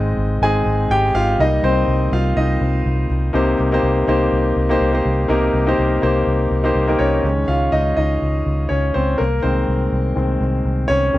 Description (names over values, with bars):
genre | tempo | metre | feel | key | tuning
piano-driven pop | 123 BPM | 4/4 | swing 56% on 16ths | unclear | A4 = 440 Hz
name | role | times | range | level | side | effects
bright grand piano | accompaniment | 0.0-11.2 s | C3 to Ab5 | -17 LUFS | left 1 dB | none
vintage muted fingered electric bass | bass | 0.0-11.2 s | Ab1 to Db2 | -19 LUFS | equal | none
room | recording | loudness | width
little or no reverb | dry, close 1970s-style studio recording | -15 LUFS | side -16 dB against mid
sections
0.0-3.3 A section; 3.3-7.2 B section; 7.2-11.2 C section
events
grand piano solo 0.0-3.3, 7.2-11.2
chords
0.0 Ab; 1.4 Cm7; 7.2 Dbsus2; 9.2 Ab/C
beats
0.41 0.90 | 1.39 1.88 2.36 2.85 | 3.34 3.83 4.31 4.80 | 5.29 5.78 6.26 6.75 | 7.24 7.72 8.21 8.70 | 9.19 9.67 10.16 10.65 | 11.14